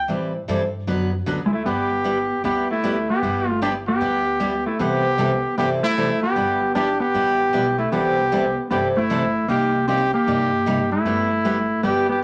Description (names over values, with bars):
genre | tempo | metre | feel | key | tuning
country, western swing | 153 BPM | 4/4 | swing 66% on 8ths | G major | A4 = 440 Hz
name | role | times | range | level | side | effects
bright trumpet | second line | 0.0-12.2 s | E4 to G4 | -24 LUFS | equal | none
upright bass | bass | 0.0-12.2 s | G1 to A2 | -34 LUFS | equal | none
picked steel-string acoustic guitar | accompaniment | 0.1-12.1 s | C3 to B4 | -27 LUFS | equal | none
clean lap steel guitar | melody | 1.5-12.2 s | Ab3 to D4 | -26 LUFS | equal | none
room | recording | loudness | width
wet studio reverb, RT60 0.7 s | none | -21 LUFS | mono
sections
0.0-1.7 A section; 1.7-12.2 B section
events
trumpet solo 0.0-1.7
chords
0.1 Am7; 0.9 D6; 1.7 G6; 4.8 C6; 6.4 G6; 7.9 C6; 9.5 Cm7; 11.1 G6